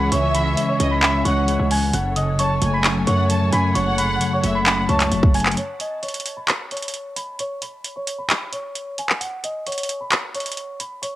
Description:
hip hop, trap; 132 BPM; 4/4; half-time; C# minor; A4 = 442 Hz
celesta; melody; 0.0-11.2 s; C#5 to B6; -25 LUFS; equal; low-pass filter, cassette tape, tape echo
warm studio violin section; second line; 0.0-5.1 s; D#5 to A5; -27 LUFS; right 1 dB; cassette tape, tape echo
mellow tine electric piano; accompaniment; 0.0-5.6 s; F#2 to C#5; -22 LUFS; equal; medium stereo tremolo, low-pass filter, cassette tape
muted studio string section; sustained chords; 0.0-5.5 s; E3 to C#5; -30 LUFS; equal; cassette tape
hard-hitting 808-style bass; bass; 0.0-5.6 s; F#1 to F#2; -23 LUFS; equal
trap drum kit; drums; 0.1-11.1 s; handclaps, hi-hat, kick drum; -21 LUFS; equal; cassette tape
light reverb, small room ambience; home recording on cassette; -18 LUFS; side -15 dB against mid
0.0-5.6 A section; 5.6-11.2 B section
break 5.6-11.2; filter sweep 5.6-11.2
0.0 C#m; 1.9 F#m; 5.6 C#5; 9.2 F#5

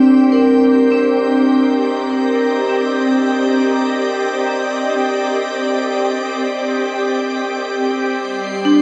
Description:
ambient; free time; C minor; A4 = 441 Hz
soft additive organ-like pad; sustained chords; 0.0-8.8 s; G3 to Eb5; -20 LUFS; equal; ensemble chorus, built-in reverb
vibraphone with hard mallets; arpeggios; 0.0-8.8 s; C4 to Bb4; -18 LUFS; equal; delay
drifting glass-harmonics texture; texture; 0.0-8.8 s; G5 to C7; -30 LUFS; equal; chorus, built-in reverb
wet shimmer reverb, RT60 7.0 s; dark, warm production; -16 LUFS; mono
0.0-8.8 A section
0.0 Cm7; 8.0 G5

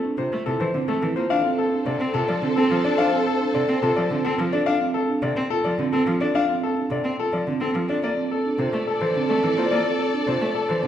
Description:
classical, minimalist pattern music; 107 BPM; 3/4; straight; Bb lydian; A4 = 439 Hz
clear grand piano; melody; 0.0-10.9 s; A4 to F5; -25 LUFS; left 4 dB
marimba with soft mallets; arpeggios; 0.0-10.9 s; C4 to A4; -26 LUFS; right 5 dB
rich cello; accompaniment; 0.2-10.9 s; C3 to D4; -26 LUFS; equal
mellow hollow alto flute; second line; 1.3-4.5, 8.0-10.9 s; A4; -29 LUFS; right 4 dB
warm symphonic violin section; sustained chords; 1.3-4.5, 8.0-10.9 s; A4 to D5; -28 LUFS; left 3 dB
wet recital hall reverb, RT60 1.7 s; heard from further back in the room; -20 LUFS; side -10 dB against mid
0.0-10.9 A section
0.0 Bbmaj9 (rootless); 1.3 F; 8.0 Bbmaj9 (rootless)

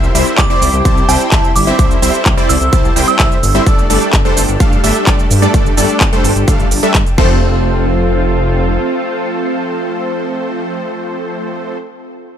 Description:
EDM, festival progressive house; 128 BPM; 4/4; straight; F major; A4 = 440 Hz
lush unison pad; sustained chords; 0.0-11.8 s; C4 to C5; -20 LUFS; equal; chorus, sidechain pumping
supersaw stab; riff; 0.0-11.8 s; F3 to A5; -17 LUFS; equal; sidechain pumping, ping-pong delay
wide detuned saw bass; bass; 0.0-8.8 s; F1 to G2; -16 LUFS; equal; chorus, sidechain pumping
big-room dance drum kit; drums; 0.0-7.3 s; crash cymbal, handclaps, hi-hat, shaker; -18 LUFS; right 1 dB
glassy synth bell; melody; 0.4-3.7 s; A5 to E6; -18 LUFS; right 2 dB; chorus, ping-pong delay
electronic kick drum; drums; 0.4-7.3 s; -13 LUFS; equal
little or no reverb; -10 LUFS; side -9 dB against mid
0.0-7.4 A section; 7.4-11.2 B section
drop 0.0-7.4
0.0 C; 3.7 Gsus2; 7.2 F

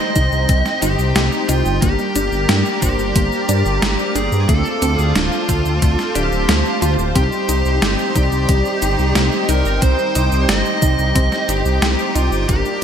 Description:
synthwave; 90 BPM; 4/4; straight; C minor; A4 = 441 Hz
high-gain lead guitar; melody; 0.0-12.8 s; F4 to Eb5; -21 LUFS; left 2 dB; distortion, ping-pong delay
lush unison pad; sustained chords; 0.0-12.8 s; Eb4 to D6; -25 LUFS; equal; chorus, phaser, sidechain pumping
wide unison pluck; arpeggios; 0.0-12.8 s; A3 to A4; -26 LUFS; left 1 dB; digital delay
mellow synth brass; stabs; 0.0-12.8 s; G3 to D5; -24 LUFS; right 3 dB; chorus, cassette tape, digital delay
dark detuned saw bass; bass; 0.2-12.6 s; D1 to G2; -18 LUFS; equal
detuned 8-bit digital drum machine; drums; 0.2-12.8 s; hi-hat, shaker, snare drum; -22 LUFS; right 1 dB; overdrive, studio reverb, gated reverb
electronic kick drum; drums; 0.2-12.6 s; -18 LUFS; equal; overdrive, studio reverb
moderate lush hall reverb, RT60 2.3 s; bright 1980s-style digital production; -14 LUFS; side -8 dB against mid
0.0-12.8 A section
0.0 Cm; 1.8 Gm; 4.5 Dm7; 7.2 Cm

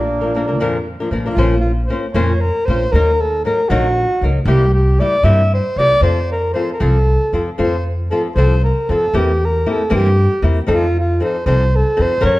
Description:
mexican folk, mariachi; 77 BPM (dotted quarters); 6/8; straight; A4 = 435 Hz
mellow alto saxophone; melody; 0.0-12.4 s; D4 to E5; -18 LUFS; equal; slapback echo
mellow trumpet; second line; 0.0-0.9 s; Bb3; -29 LUFS; right 5 dB
upright bass; bass; 0.0-12.4 s; Bb1 to G2; -16 LUFS; equal
flamenco guitar; accompaniment; 0.2-12.4 s; Bb2 to C5; -20 LUFS; left 2 dB
moderate recital hall reverb, RT60 1.5 s; dark, warm production; -13 LUFS; side -18 dB against mid
0.0-1.4 A section; 1.4-12.4 B section
0.0 Bb; 1.4 Bbmadd9; 2.9 Ebm; 4.5 C7; 6.0 F; 9.1 C7/E; 10.7 F7

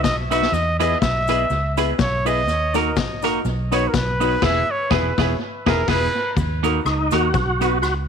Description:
ska; 123 BPM; 4/4; swing 56% on 8ths; A4 = 440 Hz
breathy trumpet; melody; 0.0-6.3 s; Bb4 to E5; -23 LUFS; right 1 dB; tape echo
vintage muted fingered electric bass; bass; 0.0-8.1 s; E1 to E2; -24 LUFS; right 1 dB
street-band drum kit; drums; 0.0-8.0 s; crash cymbal, hi-hat, kick drum, rim click, snare drum; -25 LUFS; left 4 dB; tape echo
cabasa; percussion; 0.0-8.0 s; -43 LUFS; left 16 dB
semi-hollow electric guitar; accompaniment; 0.3-7.8 s; Bb3 to B4; -25 LUFS; right 14 dB
warm upright piano; stabs; 0.3-7.7 s; D#4 to B4; -26 LUFS; left 11 dB
overdriven tonewheel organ; melody; 6.9-7.9 s; Eb4 to Gb4; -21 LUFS; right 1 dB; chorus vibrato, fast rotary speaker
light reverb, small room ambience; 1960s-style stereo with parts hard left and right; -17 LUFS; side -7 dB against mid
0.0-6.4 A section; 6.4-8.1 B section
trumpet solo 0.0-6.4; band accent 4.4-6.4
0.0 B; 0.5 E; 2.5 Ebm; 3.5 B; 4.4 E; 6.4 Ebm; 7.3 B

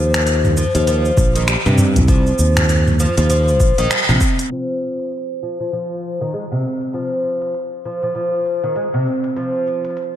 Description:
organic downtempo; 99 BPM; 4/4; swing 59% on 16ths; A4 = 438 Hz
oud; arpeggios; 0.0-10.0 s; C3 to Ab3; -19 LUFS; equal; low-pass filter, ping-pong delay
sustaining fretless electric bass; bass; 0.0-4.2 s; Bb1 to G2; -16 LUFS; equal; analog chorus, sidechain pumping
organic electronic drum kit; drums; 0.1-10.1 s; finger snaps, hi-hat, shaker, toms; -20 LUFS; equal
electronic kick drum; drums; 1.2-4.4 s; -16 LUFS; equal; overdrive
udu; percussion; 2.0-2.5 s; -20 LUFS; left 1 dB
moderate lush hall reverb, RT60 1.8 s, digital ambience; big arena sound, low-pass filter; -15 LUFS; side -11 dB against mid
0.0-4.5 A section; 4.5-10.2 B section
band accent 3.9-4.2; filter sweep on oud 4.5-10.2
0.0 Eb5; 4.5 N.C.

